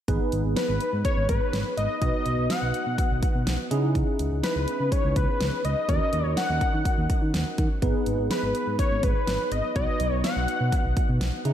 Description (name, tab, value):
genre	synth-pop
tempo	124 BPM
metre	4/4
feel	straight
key	G# minor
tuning	A4 = 440 Hz
part	bright tine electric piano	accompaniment	0.1-11.5 s	B3 to B4	-31 LUFS	right 2 dB	analog chorus
part	smooth synth bass	bass	0.1-11.5 s	G#1 to D#3	-27 LUFS	equal	none
part	pop drum kit	drums	0.1-11.5 s	hi-hat, kick drum, snare drum	-27 LUFS	equal	none
part	wide unison lead	melody	0.6-10.9 s	B4 to F#5	-28 LUFS	left 2 dB	tape echo
room	moderate lush hall reverb, RT60 2.2 s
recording	dreamy mix soaked in reverb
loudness	-22 LUFS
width	side -10 dB against mid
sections	0.1-11.5 A section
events	none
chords	0.1 G#m; 2.0 B; 3.7 C#madd9; 5.9 D#m7; 7.8 G#m; 9.8 B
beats	| 0.08 0.57 1.05 1.53 | 2.02 2.50 2.98 3.47 | 3.95 4.44 4.92 5.41 | 5.89 6.37 6.86 7.34 | 7.82 8.31 8.79 9.28 | 9.76 10.24 10.73 11.21